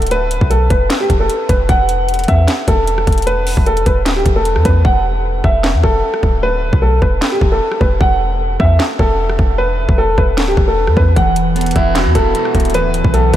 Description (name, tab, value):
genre	hip hop, trap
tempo	152 BPM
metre	4/4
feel	half-time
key	E minor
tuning	A4 = 444 Hz
part	dark baby grand piano	melody	0.0-13.4 s	G4 to F#5	-16 LUFS	equal	low-pass filter, ping-pong delay
part	warm 808-style bass	bass	0.0-13.4 s	D1 to E2	-15 LUFS	equal	none
part	trap drum kit	drums	0.0-13.4 s	handclaps, hi-hat, kick drum, rim click, snare drum	-17 LUFS	equal	none
part	electric guitar at the edge of break-up	accompaniment	11.2-13.4 s	E2 to F#4	-18 LUFS	right 1 dB	low-pass filter
room	moderate huge ambient reverb, RT60 7.9 s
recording	dreamy mix soaked in reverb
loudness	-11 LUFS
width	side -12 dB against mid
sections	0.0-13.4 A section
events	hi-hats muted 4.8-11.2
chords	0.1 Bsus4; 1.7 Esus2; 3.3 G69/D (rootless); 6.4 Bsus4; 8.0 Esus2; 9.6 G69 (rootless); 11.2 Esus2